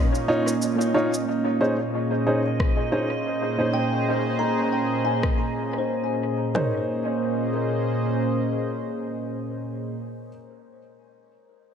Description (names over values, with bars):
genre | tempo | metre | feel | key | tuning
ambient dub | 91 BPM | 4/4 | swing 56% on 16ths | Bb minor | A4 = 440 Hz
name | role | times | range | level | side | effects
warm analog pad | sustained chords | 0.0-9.9 s | Bb2 to Eb5 | -26 LUFS | right 1 dB | chorus
kalimba | arpeggios | 0.0-10.3 s | Bb3 to Bb5 | -31 LUFS | left 1 dB | vintage 12-bit sampler grit, low-pass filter, tape echo
electronic shaker and rim click | drums | 0.1-5.4 s | none | -35 LUFS | equal | studio ambience, dub echo
warm upright piano | stabs | 0.3-10.3 s | Db4 to Db5 | -27 LUFS | equal | vintage 12-bit sampler grit, dub echo
drifting glass-harmonics texture | texture | 1.9-6.6 s | Eb5 | -34 LUFS | right 3 dB | chorus, built-in reverb
organic electronic drum kit | drums | 2.6-6.7 s | kick drum, snare drum, toms | -23 LUFS | left 1 dB | studio ambience
room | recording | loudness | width
moderate concert hall reverb, RT60 2.3 s | none | -22 LUFS | side -7 dB against mid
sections
0.0-1.3 A section; 1.3-6.6 B section; 6.6-9.2 C section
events
filter sweep on kalimba 1.3-6.6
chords
0.0 Bbm11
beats
0.62 | 1.28 1.94 2.60 3.25 | 3.91 4.57 5.23 5.89 | 6.55 7.21 7.87 8.53